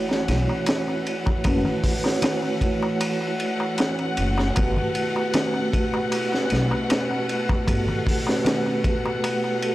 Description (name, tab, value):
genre	trip hop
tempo	77 BPM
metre	4/4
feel	straight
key	F# phrygian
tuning	A4 = 441 Hz
part	vibraphone with soft mallets	accompaniment	0.0-9.7 s	A3 to C#5	-26 LUFS	right 1 dB	tremolo, tape echo
part	clear studio string section	sustained chords	0.0-9.7 s	B2 to F#5	-29 LUFS	left 1 dB	vintage 12-bit sampler grit
part	impact	sound effects	0.0-1.4 s	none	-53 LUFS	equal	none
part	crunchy breakbeat drum kit	drums	0.1-9.7 s	hi-hat, kick drum, ride cymbal, snare drum	-25 LUFS	equal	none
part	darbuka	percussion	0.1-9.6 s	none	-34 LUFS	left 2 dB	none
part	upright bass	bass	0.3-7.9 s	F#1 to B1	-25 LUFS	equal	transformer saturation
room	small room ambience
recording	dry, gritty hardware recording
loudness	-21 LUFS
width	side -16 dB against mid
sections	0.0-9.7 A section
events	impact 0.0-1.4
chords	0.0 F#m7; 4.6 Gmaj9